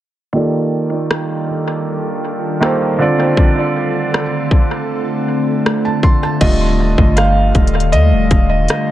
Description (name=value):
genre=contemporary R&B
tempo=79 BPM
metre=4/4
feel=straight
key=unclear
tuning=A4 = 440 Hz
part: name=felt-muted upright piano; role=accompaniment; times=0.3-8.9 s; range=D3 to C6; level=-16 LUFS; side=right 2 dB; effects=low-pass filter, analog delay
part: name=ethereal airy pad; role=sustained chords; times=1.3-8.9 s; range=D3 to A4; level=-20 LUFS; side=equal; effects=ensemble chorus, built-in reverb, phaser, sidechain pumping, low-pass filter
part: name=trap drum kit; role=drums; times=1.1-8.9 s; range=crash cymbal, hi-hat, kick drum, rim click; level=-16 LUFS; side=equal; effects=vintage 12-bit sampler grit, analog delay
part: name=soft 808-style bass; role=bass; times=6.4-8.7 s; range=Eb1 to Eb2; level=-14 LUFS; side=equal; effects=none
room=light reverb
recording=echo-heavy mix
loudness=-13 LUFS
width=side -13 dB against mid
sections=0.3-6.4 A section; 6.4-8.9 B section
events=filter sweep 0.3-6.4; felt piano solo 6.4-8.9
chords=0.3 Ebmaj9#11; 3.0 Dm7; 6.4 Ebmaj9#11